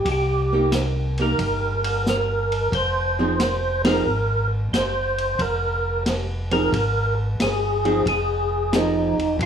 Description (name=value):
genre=soul jazz organ trio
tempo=90 BPM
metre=4/4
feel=swing 68% on 8ths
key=unclear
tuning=A4 = 439 Hz
part: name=percussive tonewheel organ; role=melody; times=0.0-9.5 s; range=Eb4 to C5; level=-22 LUFS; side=right 1 dB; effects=slow rotary speaker, chorus vibrato
part: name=mellow tonewheel organ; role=bass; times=0.0-9.5 s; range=E1 to C2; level=-25 LUFS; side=equal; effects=slow rotary speaker
part: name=vintage drum kit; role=drums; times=0.1-9.5 s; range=hi-hat, kick drum, ride cymbal, snare drum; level=-27 LUFS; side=equal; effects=none
part: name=archtop guitar, miked and amplified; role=accompaniment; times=0.5-9.1 s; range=F3 to Ab4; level=-24 LUFS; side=right 2 dB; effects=none
room=moderate club reverb, RT60 0.7 s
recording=small room reverb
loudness=-19 LUFS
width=side -8 dB against mid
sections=0.0-9.5 A section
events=band accent 3.7-4.1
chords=0.0 Cm7; 2.7 Fm7